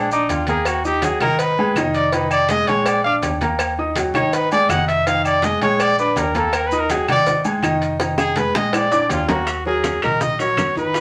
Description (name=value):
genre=Afro-Cuban jazz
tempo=164 BPM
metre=4/4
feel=straight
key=Eb harmonic minor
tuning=A4 = 440 Hz
part: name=warm trumpet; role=melody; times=0.0-11.0 s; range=D4 to Gb5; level=-21 LUFS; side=equal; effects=none
part: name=warm grand piano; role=accompaniment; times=0.0-11.0 s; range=Eb3 to Eb6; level=-24 LUFS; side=equal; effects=none
part: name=hollow-body short-scale fingered electric bass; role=bass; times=0.0-11.0 s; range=F1 to Eb2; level=-32 LUFS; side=equal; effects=none
part: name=congas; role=percussion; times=0.1-11.0 s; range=none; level=-31 LUFS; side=equal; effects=none
part: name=maracas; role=percussion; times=0.1-11.0 s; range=none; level=-40 LUFS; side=equal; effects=none
part: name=agogo bells and timbales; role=percussion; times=0.3-11.0 s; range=none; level=-27 LUFS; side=equal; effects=none
part: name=cowbell and bongos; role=percussion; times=0.3-11.0 s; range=none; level=-29 LUFS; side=equal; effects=none
part: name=claves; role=percussion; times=0.7-10.8 s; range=none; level=-33 LUFS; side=equal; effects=none
room=moderate studio reverb, RT60 0.6 s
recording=none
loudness=-19 LUFS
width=mono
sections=0.0-9.5 A section; 9.5-11.0 B section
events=trumpet solo 0.0-9.5; drum fill 8.0-9.5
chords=0.0 Bb7; 0.7 Ebm; 1.4 Abm; 2.1 Fm7b5; 2.9 Bb7; 3.6 Ebm; 4.3 Ab5; 5.1 Fm7; 5.8 Bb7; 6.5 Ebm; 7.3 Ab5; 8.0 Fm7b5; 8.7 Bb7; 9.5 Ebm7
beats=0.29 | 0.66 1.03 1.39 1.76 | 2.13 2.50 2.86 3.23 | 3.60 3.96 4.33 4.70 | 5.06 5.43 5.80 6.17 | 6.53 6.90 7.27 7.63 | 8.00 8.37 8.74 9.10 | 9.47 9.84 10.21 10.58 | 10.95